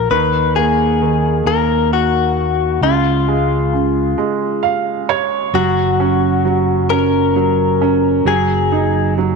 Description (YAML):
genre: six-eight pop ballad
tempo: 44 BPM (dotted quarters)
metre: 6/8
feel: straight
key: F# major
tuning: A4 = 440 Hz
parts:
  - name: direct-recorded clean electric guitar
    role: melody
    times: 0.0-9.1 s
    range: E#4 to B4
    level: -17 LUFS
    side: left 11 dB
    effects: slapback echo
  - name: warm upright piano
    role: accompaniment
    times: 0.0-9.4 s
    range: C#3 to E#5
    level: -17 LUFS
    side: right 10 dB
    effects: none
  - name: fingered electric bass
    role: bass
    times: 0.0-9.4 s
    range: F#1 to D#2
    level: -19 LUFS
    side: equal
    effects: none
room: moderate echo chamber reverb, RT60 2.5 s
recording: 1960s-style stereo with parts hard left and right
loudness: -13 LUFS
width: side -4 dB against mid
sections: 0.0-5.5 A section; 5.5-9.4 B section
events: break 4.2-5.5; upright piano fill 4.2-5.5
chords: 0.1 G#sus2/D#; 2.8 C#; 5.5 F#; 8.3 D#m/F#